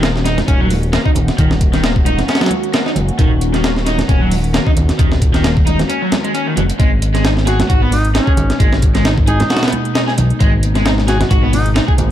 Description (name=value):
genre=breakbeat, breaks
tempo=133 BPM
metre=4/4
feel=swing 55% on 16ths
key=G# minor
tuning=A4 = 440 Hz
part: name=phased analog pad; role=sustained chords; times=0.0-12.1 s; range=B2 to F#4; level=-23 LUFS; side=left 1 dB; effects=phaser, chorus, sidechain pumping
part: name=crunchy overdriven guitar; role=riff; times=0.0-11.9 s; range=D#3 to G#4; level=-19 LUFS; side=equal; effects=vintage 12-bit sampler grit, ping-pong delay
part: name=fat analog bass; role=bass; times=0.0-12.1 s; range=D#1 to B1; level=-16 LUFS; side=equal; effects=none
part: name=breakbeat sampler-style drum kit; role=drums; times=0.0-12.1 s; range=hi-hat, kick drum, snare drum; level=-15 LUFS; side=equal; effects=none
part: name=electronic hi-hat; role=drums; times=0.0-12.1 s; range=none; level=-32 LUFS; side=right 4 dB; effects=none
part: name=congas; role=percussion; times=0.4-12.1 s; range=none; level=-24 LUFS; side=right 4 dB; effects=none
part: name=mellow alto saxophone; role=melody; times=7.5-11.7 s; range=C#4 to F#4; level=-22 LUFS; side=equal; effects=AM radio sound, ping-pong delay
room=little or no reverb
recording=dark, warm production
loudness=-12 LUFS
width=side -11 dB against mid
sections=0.0-12.1 A section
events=break 5.9-6.8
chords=0.0 D#m7; 6.8 G#madd9